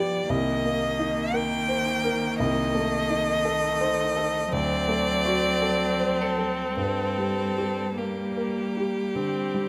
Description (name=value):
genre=classical, slow romantic movement for piano quintet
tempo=50-58 BPM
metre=4/4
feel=rubato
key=G minor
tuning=A4 = 440 Hz
part: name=clear violin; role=melody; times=0.0-9.7 s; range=G4 to G5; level=-30 LUFS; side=equal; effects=none
part: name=warm cello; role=second line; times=0.0-9.7 s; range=Eb3 to G3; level=-35 LUFS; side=equal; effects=none
part: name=clear viola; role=accompaniment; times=0.0-9.7 s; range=A3 to C4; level=-33 LUFS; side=equal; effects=none
part: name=warm baby grand piano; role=accompaniment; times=0.0-9.7 s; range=C2 to C5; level=-31 LUFS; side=equal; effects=none
room=moderate recital hall reverb, RT60 1.6 s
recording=close, detailed microphones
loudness=-26 LUFS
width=mono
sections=0.0-9.7 A section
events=none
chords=0.3 Cm7; 2.4 Adim/C; 4.5 D7; 6.8 Gm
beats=0.29 1.34 | 2.39 3.46 4.53 5.63 | 6.79 7.98 9.15